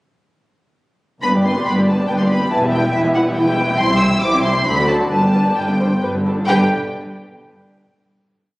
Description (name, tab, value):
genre	quick classical-period movement for string orchestra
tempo	130-142 BPM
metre	3/4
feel	straight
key	G major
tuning	A4 = 440 Hz
part	muted symphonic violin section	melody	1.2-6.7 s	E5 to E6	-20 LUFS	left 1 dB	none
part	muted symphonic violin section	second line	1.2-6.7 s	E4 to E5	-22 LUFS	equal	none
part	muted symphonic viola section	accompaniment	1.2-6.7 s	D3 to E4	-21 LUFS	equal	none
part	muted symphonic cello section	bass	1.2-6.7 s	C2 to G2	-20 LUFS	equal	none
part	muted symphonic double bass section	bass	1.2-6.7 s	E1 to D2	-23 LUFS	equal	none
room	moderate recital hall reverb, RT60 1.5 s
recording	recorded on a phone in the room, studio reverb, compression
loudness	-14 LUFS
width	side -20 dB against mid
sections	1.2-6.5 theme; 6.5-7.8 final chord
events	none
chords	1.2 G; 2.5 Em; 3.8 C; 4.7 D7; 5.1 G; 6.5 G5